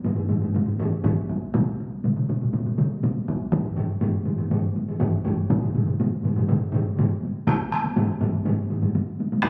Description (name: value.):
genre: japanese traditional, taiko drum ensemble.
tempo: 121 BPM.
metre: 4/4.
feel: straight.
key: none.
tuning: none.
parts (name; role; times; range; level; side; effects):
taiko ensemble; percussion; 0.0-9.5 s; none; -29 LUFS; equal; none.
taiko ensemble; percussion; 0.0-8.9 s; none; -27 LUFS; equal; none.
solo taiko drums; percussion; 1.0-9.5 s; none; -31 LUFS; equal; none.
taiko ensemble; percussion; 1.5-9.5 s; none; -28 LUFS; equal; none.
room: wet recital hall reverb, RT60 1.5 s.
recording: recorded on a phone in the room, club ambience.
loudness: -24 LUFS.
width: mono.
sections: 0.0-7.5 A section; 7.5-9.5 B section.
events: none.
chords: none.